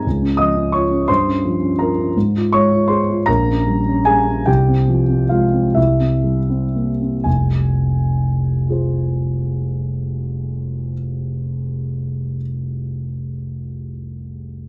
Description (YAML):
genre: classical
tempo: 38-60 BPM (dotted quarters)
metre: 6/8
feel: rubato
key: F minor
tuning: A4 = 441 Hz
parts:
  - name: dark concert grand piano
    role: accompaniment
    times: 0.0-14.7 s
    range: F1 to Eb6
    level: -18 LUFS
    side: equal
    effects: none
room: light reverb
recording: dark, warm production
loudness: -18 LUFS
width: mono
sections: 0.0-7.3 A section; 7.3-13.1 B section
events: slowing down 1.1-7.3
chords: 0.1 Db; 1.1 Gm7b5; 2.2 Fm/Ab; 3.3 Gdim/Bb; 4.5 Fm/C; 5.8 C7; 7.3 Fm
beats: | 0.05 1.08 | 2.15 3.27 | 4.47 5.76 | 7.25 8.69 | 10.13 11.59